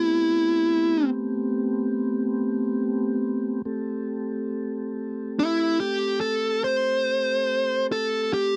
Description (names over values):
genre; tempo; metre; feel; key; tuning
blues; 47 BPM (dotted quarters); 12/8; straight; A minor; A4 = 440 Hz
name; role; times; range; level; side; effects
dark smooth lead guitar; melody; 0.0-8.6 s; E4 to C5; -24 LUFS; equal; overdrive
mellow tonewheel organ; sustained chords; 0.0-8.6 s; A3 to A4; -29 LUFS; equal; slow rotary speaker
room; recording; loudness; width
light reverb; dry, close 1970s-style studio recording; -25 LUFS; mono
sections
0.0-8.6 A section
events
none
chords
0.0 Am9